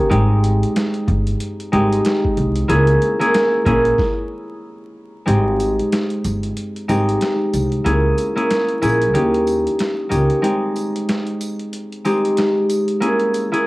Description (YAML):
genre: hip hop, boom-bap hip-hop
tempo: 93 BPM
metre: 4/4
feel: swing 58% on 16ths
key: Ab major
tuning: A4 = 440 Hz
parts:
  - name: concert harp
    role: accompaniment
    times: 0.0-13.7 s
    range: Ab3 to Ab4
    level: -17 LUFS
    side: equal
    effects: cassette tape, high-pass filter, low-pass filter
  - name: upright bass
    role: bass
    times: 0.1-10.3 s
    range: G1 to Eb2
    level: -19 LUFS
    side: equal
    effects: none
  - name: boom bap sampler-style drum kit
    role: drums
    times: 0.1-13.7 s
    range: hi-hat, kick drum, snare drum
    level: -24 LUFS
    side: equal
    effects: none
  - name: tambourine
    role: percussion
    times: 5.6-13.5 s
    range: none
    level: -38 LUFS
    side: right 3 dB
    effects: none
room: light reverb, small room reverb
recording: home recording on cassette, vinyl crackle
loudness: -15 LUFS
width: side -20 dB against mid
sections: 0.0-5.3 A section; 5.3-13.7 B section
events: stop 4.0-5.3; kick muted 5.3-13.7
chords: 0.1 Abmaj7; 2.7 Dbm6; 4.0 N.C.; 5.3 Abmaj7; 7.9 Dbm6; 9.1 Eb7; 10.4 Abmaj7; 13.0 Dbm6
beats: | 0.11 0.76 1.40 2.05 | 2.69 3.34 3.98 4.63 | 5.27 5.92 6.57 7.21 | 7.86 8.50 9.14 9.79 | 10.44 11.08 11.73 12.37 | 13.02 13.66